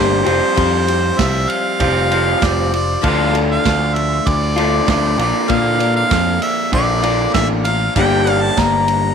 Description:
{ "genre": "folk rock and heartland rock", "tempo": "98 BPM", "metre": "4/4", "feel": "straight", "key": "unclear", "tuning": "A4 = 440 Hz", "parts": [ { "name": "clear harmonica", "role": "melody", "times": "0.0-9.1 s", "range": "C5 to Bb5", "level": "-19 LUFS", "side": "equal", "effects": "none" }, { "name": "picked acoustic archtop guitar", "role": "accompaniment", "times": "0.0-9.1 s", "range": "G2 to Bb4", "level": "-23 LUFS", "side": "left 12 dB", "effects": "none" }, { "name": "electric guitar through a small old amp", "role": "riff", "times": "0.0-9.1 s", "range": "G2 to G4", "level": "-18 LUFS", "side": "right 1 dB", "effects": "none" }, { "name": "picked electric bass", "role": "bass", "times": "0.0-9.1 s", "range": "F1 to Bb2", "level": "-20 LUFS", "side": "equal", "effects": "none" }, { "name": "natural country drum kit", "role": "drums", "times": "0.3-9.0 s", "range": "crash cymbal, kick drum, ride cymbal, snare drum", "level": "-23 LUFS", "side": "right 4 dB", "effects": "none" } ], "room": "light reverb, small room ambience", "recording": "1960s-style stereo", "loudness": "-13 LUFS", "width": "side -6 dB against mid", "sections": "0.0-9.1 A section", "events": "none", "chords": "0.3 Fsus2; 3.0 Dm; 5.2 Bb; 8.0 Gm", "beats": "| 0.57 1.19 1.80 2.42 | 3.03 3.65 4.26 4.88 | 5.49 6.11 6.72 7.34 | 7.95 8.57" }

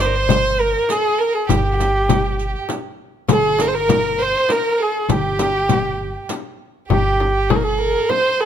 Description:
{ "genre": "Persian modal ensemble", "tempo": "100 BPM", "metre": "3/4", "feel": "straight", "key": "unclear", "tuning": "A4 = 440 Hz", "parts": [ { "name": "dark kamancheh", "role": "melody", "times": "0.0-8.5 s", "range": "G4 to C5", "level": "-18 LUFS", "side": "equal", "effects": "none" }, { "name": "clear violin", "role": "second line", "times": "0.0-8.5 s", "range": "G4 to C5", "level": "-24 LUFS", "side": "right 7 dB", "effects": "none" }, { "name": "upright bass", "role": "bass", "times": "0.0-7.9 s", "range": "G1", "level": "-24 LUFS", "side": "equal", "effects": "none" }, { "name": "frame drum", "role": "percussion", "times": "0.0-8.2 s", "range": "none", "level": "-21 LUFS", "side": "left 7 dB", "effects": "none" }, { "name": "riq", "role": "percussion", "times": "0.0-6.4 s", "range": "none", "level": "-28 LUFS", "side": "right 8 dB", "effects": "none" } ], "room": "light reverb", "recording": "close, detailed microphones", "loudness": "-16 LUFS", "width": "side -9 dB against mid", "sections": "0.0-6.9 A section; 6.9-8.5 B section", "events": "none", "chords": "none", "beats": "0.30 0.90 | 1.50 2.10 2.69 | 3.29 3.89 4.49 | 5.09 5.69 6.29 | 6.89 7.49 8.09" }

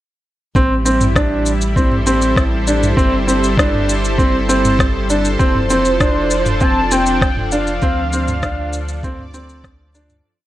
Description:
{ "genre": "piano and strings electronica", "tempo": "99 BPM", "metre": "4/4", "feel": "straight", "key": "A minor", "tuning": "A4 = 440 Hz", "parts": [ { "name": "lush unison pad", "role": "sustained chords", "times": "0.6-10.3 s", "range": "F3 to D5", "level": "-22 LUFS", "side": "equal", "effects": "chorus, sidechain pumping" }, { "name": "warm baby grand piano", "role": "riff", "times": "0.6-10.1 s", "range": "C4 to D4", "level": "-18 LUFS", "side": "equal", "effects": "tape echo" }, { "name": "warm sub bass", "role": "bass", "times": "0.6-10.2 s", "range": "F1 to D2", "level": "-21 LUFS", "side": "equal", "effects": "sidechain pumping" }, { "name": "electronic kick drum", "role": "drums", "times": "0.6-9.8 s", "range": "none", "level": "-17 LUFS", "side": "equal", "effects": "none" }, { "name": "minimal click drum kit", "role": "drums", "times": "0.6-10.2 s", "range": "rim click, shaker, toms", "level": "-21 LUFS", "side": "equal", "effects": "none" }, { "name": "warm velvety synth lead", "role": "melody", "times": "5.4-9.6 s", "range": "C5 to A5", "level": "-20 LUFS", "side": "equal", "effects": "chorus" } ], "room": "light reverb", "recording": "none", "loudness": "-13 LUFS", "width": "side -14 dB against mid", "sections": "0.6-10.3 drop", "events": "drop 0.6-10.3; fade-out 7.0-10.3", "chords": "0.6 Am7; 3.0 C6/G; 5.4 F6; 7.8 Dm", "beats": "| 0.56 1.16 1.77 2.37 | 2.98 3.58 4.19 4.80 | 5.40 6.01 6.62 7.22 | 7.83 8.43 9.04 9.65" }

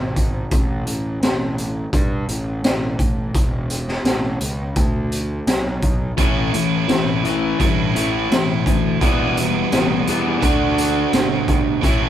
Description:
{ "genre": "classic rock", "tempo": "85 BPM", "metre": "4/4", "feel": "straight", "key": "unclear", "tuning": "A4 = 441 Hz", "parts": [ { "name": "fuzz picked electric bass", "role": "bass", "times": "0.0-12.1 s", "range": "E1 to G2", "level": "-24 LUFS", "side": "equal", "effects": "overdrive" }, { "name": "raw garage drum kit", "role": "drums", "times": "0.2-12.0 s", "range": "hi-hat, kick drum, snare drum", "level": "-20 LUFS", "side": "equal", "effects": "none" }, { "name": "biting overdriven guitar", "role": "riff", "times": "6.2-12.1 s", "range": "E2 to F#4", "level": "-21 LUFS", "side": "right 6 dB", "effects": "none" }, { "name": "distorted electric guitar", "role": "riff", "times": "6.2-12.1 s", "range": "A2 to D4", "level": "-21 LUFS", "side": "left 5 dB", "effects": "distortion" } ], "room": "light reverb", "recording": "band playing live in one room", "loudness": "-17 LUFS", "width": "side -11 dB against mid", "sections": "0.0-12.1 A section", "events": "none", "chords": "0.0 N.C.; 3.4 A/E; 4.8 Bm; 6.2 A; 9.0 Em; 10.4 D", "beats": "| 0.52 1.23 1.94 2.65 | 3.36 4.07 4.77 5.48 | 6.19 6.90 7.60 8.31 | 9.02 9.72 10.42 11.13 | 11.83" }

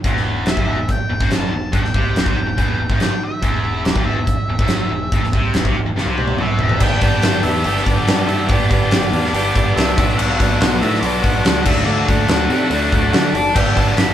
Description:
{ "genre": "classic rock", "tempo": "142 BPM", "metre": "4/4", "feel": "straight", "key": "E minor", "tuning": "A4 = 437 Hz", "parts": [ { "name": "growling picked electric bass", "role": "bass", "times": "0.0-14.1 s", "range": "E1 to D3", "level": "-23 LUFS", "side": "equal", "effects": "overdrive" }, { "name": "big rock drum kit", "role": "drums", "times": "0.0-14.1 s", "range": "crash cymbal, hi-hat, kick drum, snare drum, toms", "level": "-17 LUFS", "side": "right 1 dB", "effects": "none" }, { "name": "tight distorted guitar", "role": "riff", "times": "0.1-14.1 s", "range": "E2 to G4", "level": "-20 LUFS", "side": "left 2 dB", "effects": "distortion" }, { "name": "octave-fuzz lead guitar", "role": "melody", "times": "0.5-14.1 s", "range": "D5 to B5", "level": "-25 LUFS", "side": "equal", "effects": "distortion" }, { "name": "bright tonewheel organ", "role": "sustained chords", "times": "6.5-14.1 s", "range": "C4 to F5", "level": "-29 LUFS", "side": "left 1 dB", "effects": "none" }, { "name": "reed electric piano", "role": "accompaniment", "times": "6.8-14.1 s", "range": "F#4 to E5", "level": "-26 LUFS", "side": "right 2 dB", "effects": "none" } ], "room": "light reverb", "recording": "band playing live in one room", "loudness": "-14 LUFS", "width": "side -11 dB against mid", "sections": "0.0-6.8 A section; 6.8-14.1 B section", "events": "drum fill 6.0-6.8", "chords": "0.0 Em; 6.8 G; 10.0 Bm; 11.7 D; 13.6 G", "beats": "| 0.04 0.47 0.89 1.32 | 1.74 2.16 2.59 3.01 | 3.44 3.86 4.28 4.71 | 5.13 5.55 5.98 6.40 | 6.82 7.25 7.67 8.09 | 8.51 8.93 9.36 9.78 | 10.20 10.62 11.04 11.46 | 11.89 12.31 12.73 13.15 | 13.57 13.99" }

